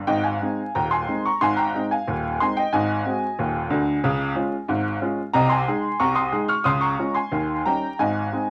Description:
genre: ragtime piano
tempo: 91 BPM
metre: 2/4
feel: straight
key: Ab major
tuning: A4 = 440 Hz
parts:
  - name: clear upright piano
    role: solo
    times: 0.1-8.5 s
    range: Eb1 to F6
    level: -23 LUFS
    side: equal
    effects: cassette tape
room: light reverb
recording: home recording on cassette, vinyl crackle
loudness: -23 LUFS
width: mono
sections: 0.1-8.5 A section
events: none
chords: 0.1 Ab; 2.7 Ab7; 4.0 Db; 5.3 Ab/C; 6.7 Db; 7.3 Eb7; 8.0 Ab

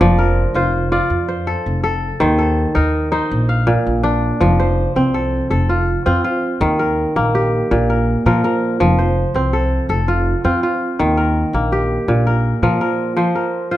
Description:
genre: west african traditional, West African string and xylophone music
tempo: 109 BPM (dotted quarters)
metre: 12/8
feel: straight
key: F mixolydian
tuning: A4 = 440 Hz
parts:
  - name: kora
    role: arpeggios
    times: 0.0-13.8 s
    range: Bb2 to F5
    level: -16 LUFS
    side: equal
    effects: none
  - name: upright bass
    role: bass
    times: 0.0-12.8 s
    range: F1 to Bb2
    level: -18 LUFS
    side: equal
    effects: none
room: light reverb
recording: dark, warm production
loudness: -14 LUFS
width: side -14 dB against mid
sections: 0.0-4.4 A section; 4.4-13.2 B section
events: none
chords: 0.0 F; 2.2 Eb5; 3.3 Bb; 4.4 F; 6.6 Eb; 7.7 Bb5; 8.8 F; 11.0 Eb; 12.1 Bb5; 13.2 F5

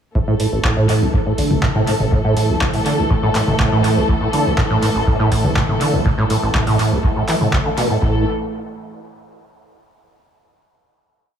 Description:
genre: acid house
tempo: 122 BPM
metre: 4/4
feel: straight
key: unclear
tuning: A4 = 440 Hz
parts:
  - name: muted studio string section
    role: sustained chords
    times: 0.2-8.2 s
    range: E3 to A4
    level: -22 LUFS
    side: equal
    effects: sidechain pumping
  - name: deep acid bass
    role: riff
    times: 0.2-8.2 s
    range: A1 to E3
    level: -18 LUFS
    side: right 1 dB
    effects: wide subtle chorus, sidechain pumping, dub echo
  - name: electronic kick drum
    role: drums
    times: 0.2-8.1 s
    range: none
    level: -20 LUFS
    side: equal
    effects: none
  - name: booming analog drum machine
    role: drums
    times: 0.4-7.9 s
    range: handclaps, hi-hat, toms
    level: -23 LUFS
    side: equal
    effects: tape echo
room: moderate echo chamber reverb, RT60 1.8 s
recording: echo-heavy mix, studio reverb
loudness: -14 LUFS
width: side -8 dB against mid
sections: 0.2-8.0 groove; 8.0-10.0 final chord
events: none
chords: 0.2 A5

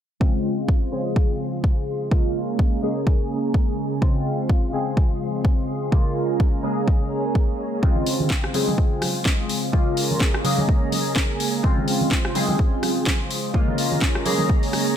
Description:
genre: filtered disco house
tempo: 126 BPM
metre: 4/4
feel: swing 57% on 16ths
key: Db major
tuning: A4 = 440 Hz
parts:
  - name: funky polysynth comp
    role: accompaniment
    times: 0.2-15.0 s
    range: Db3 to Ab4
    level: -24 LUFS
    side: equal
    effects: chorus, phaser, cassette tape, sidechain pumping, low-pass filter
  - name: string machine, full ensemble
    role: sustained chords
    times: 0.2-15.0 s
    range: Db4 to C6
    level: -30 LUFS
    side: right 1 dB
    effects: ensemble chorus, sidechain pumping, low-pass filter
  - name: electronic kick drum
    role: drums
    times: 0.2-14.6 s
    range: none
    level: -20 LUFS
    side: equal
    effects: overdrive, studio reverb
  - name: tube shaker and congas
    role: percussion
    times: 7.8-14.9 s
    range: none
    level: -29 LUFS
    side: right 3 dB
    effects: sidechain pumping on perc, low-pass filter on perc
  - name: house drum kit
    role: drums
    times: 8.1-14.8 s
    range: hi-hat, rim click, snare drum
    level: -25 LUFS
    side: left 1 dB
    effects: overdrive, sidechain pumping on hats, studio reverb
room: light reverb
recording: none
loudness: -19 LUFS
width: side -9 dB against mid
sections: 0.2-15.0 A section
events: filter sweep 0.2-15.0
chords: 0.2 Dbmaj7; 2.1 Bbm7/Db; 4.0 Dbmaj7; 5.9 Bbm7/Db; 7.8 Dbmaj7; 9.7 Bbm7/Db; 11.6 Dbmaj7; 13.5 Bbm7/Db

